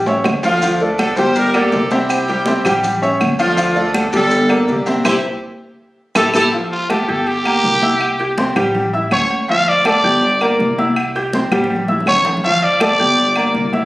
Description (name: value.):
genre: latin, salsa.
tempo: 163 BPM.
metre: 4/4.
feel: straight.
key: D minor.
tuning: A4 = 440 Hz.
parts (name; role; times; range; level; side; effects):
warm horn section; melody; 0.0-6.4 s; A3 to C5; -18 LUFS; equal; plate reverb.
upright bass; bass; 0.0-13.8 s; G1 to D2; -23 LUFS; equal; none.
bright upright piano; accompaniment; 0.1-13.8 s; F3 to G6; -17 LUFS; equal; none.
congas; percussion; 0.1-13.8 s; none; -23 LUFS; left 1 dB; none.
maracas; percussion; 0.1-6.4 s; none; -33 LUFS; left 1 dB; none.
timbales and agogo bells; percussion; 0.1-13.8 s; none; -24 LUFS; right 2 dB; none.
claves; percussion; 0.3-13.5 s; none; -24 LUFS; equal; none.
growling trumpet; melody; 6.7-13.5 s; F4 to F5; -16 LUFS; equal; plate reverb, tape echo.
room: moderate studio reverb, RT60 0.8 s.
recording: recorded on a phone in the room, studio reverb.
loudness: -13 LUFS.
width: side -18 dB against mid.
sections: 0.0-6.5 A section; 6.5-13.8 B section.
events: drum fill 0.0-0.6, 5.8-6.5, 11.5-12.4; band accent 5.1-6.5; trumpet solo 6.5-13.8.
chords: 0.0 A; 0.6 Dm; 1.4 Gm; 2.1 C; 2.8 A7; 3.6 Dm; 4.3 Gm; 5.1 C; 5.8 A5; 6.5 Fadd9; 7.3 Gm; 8.0 C; 8.7 A7; 9.5 Dm; 10.2 Gm; 11.0 C; 11.7 A7; 12.4 Dm; 13.2 Gm.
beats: 0.26 | 0.62 0.99 1.36 1.73 | 2.10 2.47 2.84 3.21 | 3.58 3.95 4.32 4.68 | 5.05 5.42 5.79 6.16 | 6.53 6.90 7.27 7.64 | 8.01 8.38 8.74 9.11 | 9.48 9.85 10.22 10.59 | 10.96 11.33 11.70 12.07 | 12.44 12.80 13.17 13.54.